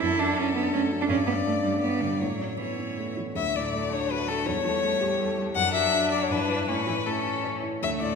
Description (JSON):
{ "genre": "quick classical-period movement for piano quartet", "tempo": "154-169 BPM", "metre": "3/4", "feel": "rubato", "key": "D major", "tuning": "A4 = 441 Hz", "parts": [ { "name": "clear violin", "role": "melody", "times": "0.0-8.2 s", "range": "A4 to F#5", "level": "-28 LUFS", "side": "left 6 dB", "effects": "none" }, { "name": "rich cello", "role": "second line", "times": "0.0-8.2 s", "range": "E3 to E4", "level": "-30 LUFS", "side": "right 5 dB", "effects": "none" }, { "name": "dark baby grand piano", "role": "accompaniment", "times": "0.0-8.2 s", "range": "D2 to C#5", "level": "-29 LUFS", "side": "equal", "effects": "none" }, { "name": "rich violin", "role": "second line", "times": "3.4-8.2 s", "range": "A3 to D4", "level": "-33 LUFS", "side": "left 2 dB", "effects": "none" } ], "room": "wet recital hall reverb, RT60 1.5 s", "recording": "minimal, uncompressed stereo recording", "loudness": "-24 LUFS", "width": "side -5 dB against mid", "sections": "0.0-3.4 A section; 3.4-8.2 B section", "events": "none", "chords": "0.0 D/F#; 1.1 G; 2.2 A; 3.4 D; 4.5 A7/E; 5.6 D/F#; 6.3 Em7/G; 6.7 A" }